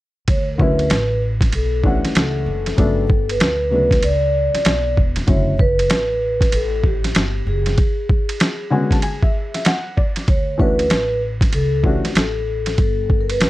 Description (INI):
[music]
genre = hip hop, jazz-hop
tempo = 96 BPM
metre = 4/4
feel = swing 64% on 16ths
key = D major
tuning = A4 = 436 Hz
[part]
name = vibraphone with soft mallets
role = melody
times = 0.3-13.5 s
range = G4 to D5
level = -21 LUFS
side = equal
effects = plate reverb
[part]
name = upright bass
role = bass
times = 0.3-13.5 s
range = E1 to D2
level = -22 LUFS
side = equal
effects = none
[part]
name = lo-fi sampler-style drum kit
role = drums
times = 0.3-13.5 s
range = hi-hat, kick drum, ride cymbal, snare drum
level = -18 LUFS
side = equal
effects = overdrive
[part]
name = dark upright piano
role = accompaniment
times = 0.6-12.1 s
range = C#3 to A5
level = -21 LUFS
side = left 2 dB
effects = none
[sound]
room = moderate small room ambience, RT60 0.5 s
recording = dark, warm production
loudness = -15 LUFS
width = side -17 dB against mid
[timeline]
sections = 0.3-10.3 A section; 10.3-13.5 A section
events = upright piano fill 8.4-10.3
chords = 0.3 Dmaj9; 2.8 Gmaj9#11; 5.3 D/F# (rootless); 7.8 Dmaj9#11; 10.3 Dmaj9; 12.8 Gadd9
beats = | 0.28 0.91 1.53 2.15 | 2.78 3.40 4.03 4.66 | 5.28 5.91 6.53 7.16 | 7.78 8.40 9.03 9.65 | 10.28 10.90 11.53 12.15 | 12.78 13.40